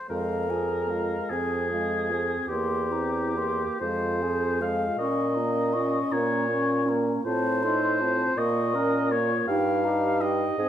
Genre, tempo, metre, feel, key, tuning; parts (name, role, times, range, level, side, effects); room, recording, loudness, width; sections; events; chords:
classical, slow romantic movement for wind quintet; 43-55 BPM (dotted quarters); 6/8; rubato; F minor; A4 = 439 Hz
warm oboe; second line; 0.0-10.7 s; G4 to F5; -29 LUFS; left 2 dB
mellow hollow concert flute; melody; 0.1-10.7 s; F5 to Eb6; -33 LUFS; left 7 dB
clear clarinet; accompaniment; 0.1-10.7 s; Db4 to Bb4; -33 LUFS; right 6 dB
warm French horn; accompaniment; 0.1-10.7 s; Ab3 to G4; -31 LUFS; equal
mellow bassoon; bass; 0.1-10.7 s; E2 to Bb2; -28 LUFS; right 2 dB
wet recital hall reverb, RT60 1.3 s; -23 LUFS; side -10 dB against mid
0.1-10.7 A section
0.1 Fm; 2.5 C7/E; 3.8 Fm; 5.0 Bbm; 7.3 F7/A; 8.4 Bbm; 9.5 Eb/G